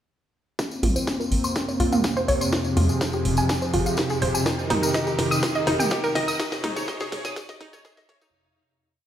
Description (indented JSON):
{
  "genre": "melodic techno",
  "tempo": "124 BPM",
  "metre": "4/4",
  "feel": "straight",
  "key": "unclear",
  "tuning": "A4 = 442 Hz",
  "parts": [
    { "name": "warm analog pad", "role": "sustained chords", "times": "0.6-8.3 s", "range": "Eb3 to Db5", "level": "-28 LUFS", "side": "right 1 dB", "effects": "chorus, sidechain pumping" },
    { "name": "analog pluck", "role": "arpeggios", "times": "0.6-8.3 s", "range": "Eb4 to Eb6", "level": "-27 LUFS", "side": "equal", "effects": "chorus, sidechain pumping, digital delay" },
    { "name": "swarming drone", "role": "drone", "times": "1.4-8.4 s", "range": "F2 to C3", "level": "-29 LUFS", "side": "equal", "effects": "built-in reverb, sidechain pumping" },
    { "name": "electronic kick drum", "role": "drums", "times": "0.6-7.9 s", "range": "none", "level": "-32 LUFS", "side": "equal", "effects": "high-pass filter on kick, studio reverb" },
    { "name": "house drum kit", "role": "drums", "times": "0.6-8.3 s", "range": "hi-hat, snare drum, toms", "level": "-28 LUFS", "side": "equal", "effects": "studio reverb" },
    { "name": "tambourine", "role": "percussion", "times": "0.6-8.3 s", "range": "none", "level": "-33 LUFS", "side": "left 2 dB", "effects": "none" },
    { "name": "riser", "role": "sound effects", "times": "2.5-8.3 s", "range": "none", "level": "-39 LUFS", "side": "equal", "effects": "none" },
    { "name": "tight sequencer bass", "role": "bass", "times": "0.8-8.2 s", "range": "Eb1 to F2", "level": "-25 LUFS", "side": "equal", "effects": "sidechain pumping" }
  ],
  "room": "moderate lush hall reverb, RT60 1.9 s, digital ambience",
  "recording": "played on a big sound system in a bare room, stone room reverb, high-pass filter",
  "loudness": "-21 LUFS",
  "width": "side -10 dB against mid",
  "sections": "0.6-8.3 build",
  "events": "build-up 0.6-8.3; drum fill 0.6-8.3; filter sweep on synth arpeggio sound 0.6-8.3; filter sweep 0.6-8.3; riser 2.5-8.3; fade-out 5.8-8.3",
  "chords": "0.6 Bbmadd9; 2.5 Fmadd9; 4.5 Eb; 6.4 Dbsus2"
}